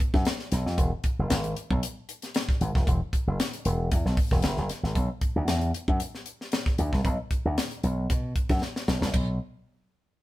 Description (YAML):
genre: funk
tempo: 115 BPM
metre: 4/4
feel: straight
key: B dorian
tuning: A4 = 444 Hz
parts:
  - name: tight funk drum kit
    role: drums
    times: 0.0-9.3 s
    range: hi-hat, kick drum, ride cymbal, snare drum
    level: -27 LUFS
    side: equal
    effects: none
  - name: slap bass with an envelope filter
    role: bass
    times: 0.1-9.4 s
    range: E1 to B2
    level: -27 LUFS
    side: equal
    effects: none
room: light reverb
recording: band playing live in one room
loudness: -25 LUFS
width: side -17 dB against mid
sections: 0.0-5.0 A section; 5.0-9.1 B section; 9.1-10.2 C section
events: drum fill 8.6-9.1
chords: none